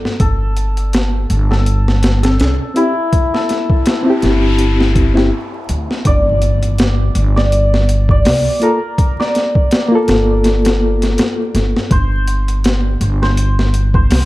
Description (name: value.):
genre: trip hop.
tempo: 82 BPM.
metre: 4/4.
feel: swing 56% on 16ths.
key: G dorian.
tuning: A4 = 440 Hz.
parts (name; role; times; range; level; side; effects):
reed electric piano; accompaniment; 0.0-11.9 s; Bb3 to A4; -16 LUFS; left 1 dB; fast tremolo, tape echo.
boom bap sampler-style drum kit; drums; 0.1-14.3 s; hi-hat, kick drum, snare drum; -16 LUFS; equal; overdrive.
santur; melody; 0.2-14.3 s; E4 to D5; -20 LUFS; left 1 dB; tape echo.
upright bass; bass; 0.2-14.3 s; G1 to D2; -14 LUFS; equal; none.
noise sweep and impact; sound effects; 3.8-9.0 s; none; -26 LUFS; left 1 dB; none.
room: digital ambience.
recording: dark, warm production, vinyl crackle.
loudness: -12 LUFS.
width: side -17 dB against mid.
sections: 0.0-6.0 A section; 6.0-14.3 B section.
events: noise sweep 3.8-6.0; impact 6.0-9.0.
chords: 0.2 C6/G; 6.0 Gm7; 11.9 C5/G.